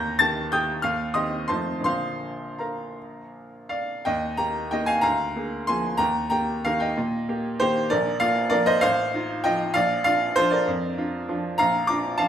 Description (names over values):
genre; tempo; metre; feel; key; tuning
classical, piano waltz; 157-208 BPM; 3/4; rubato; Bb major, Eb major from 4.1 s; A4 = 440 Hz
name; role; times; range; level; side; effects
bright baby grand piano; solo; 0.0-12.3 s; A1 to Bb6; -22 LUFS; equal; none
room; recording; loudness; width
wet recital hall reverb, RT60 1.3 s; none; -22 LUFS; side -9 dB against mid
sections
0.0-4.1 A section; 4.1-12.3 B section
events
none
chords
0.0 Eb; 0.8 Cm/Eb; 1.5 F7; 1.8 Bb; 4.1 Eb; 5.0 Bb7/D; 6.0 Eb; 7.9 Bb; 8.8 F7/A; 9.7 Bb